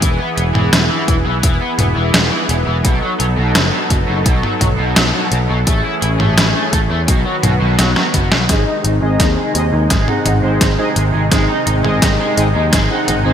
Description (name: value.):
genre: synthwave.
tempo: 85 BPM.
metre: 4/4.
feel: straight.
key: unclear.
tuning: A4 = 438 Hz.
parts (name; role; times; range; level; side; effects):
soft supersaw; sustained chords; 0.0-13.3 s; B#2 to A4; -20 LUFS; equal; wide subtle chorus, sidechain pumping.
raw garage guitar; riff; 0.0-13.3 s; B2 to E4; -21 LUFS; left 1 dB; overdrive, analog chorus, low-pass filter, digital delay.
overdriven picked electric bass; bass; 0.0-13.3 s; E1 to E2; -17 LUFS; equal; tube saturation.
detuned 8-bit digital drum machine; drums; 0.0-13.2 s; hi-hat, snare drum, toms; -17 LUFS; equal; overdrive, gated reverb.
electronic kick drum; drums; 0.0-12.9 s; none; -17 LUFS; equal; overdrive.
analog synth brass; stabs; 8.5-13.3 s; B#3 to F#5; -19 LUFS; right 1 dB; chorus, digital delay.
room: moderate lush hall reverb, RT60 2.1 s.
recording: bright 1980s-style digital production.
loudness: -12 LUFS.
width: side -9 dB against mid.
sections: 0.0-8.5 A section; 8.5-13.3 B section.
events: drum fill 7.8-8.5, 8.5-13.3; filter sweep on analog polysynth 8.5-13.3; filter sweep on overdriven electric guitar 8.5-13.3.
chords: 0.0 E; 2.8 B7; 5.7 Amaj7; 7.1 B; 8.5 G#.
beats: | 0.02 0.73 1.43 2.14 | 2.85 3.55 4.26 4.96 | 5.67 6.38 7.08 7.79 | 8.49 9.20 9.90 10.61 | 11.32 12.02 12.73.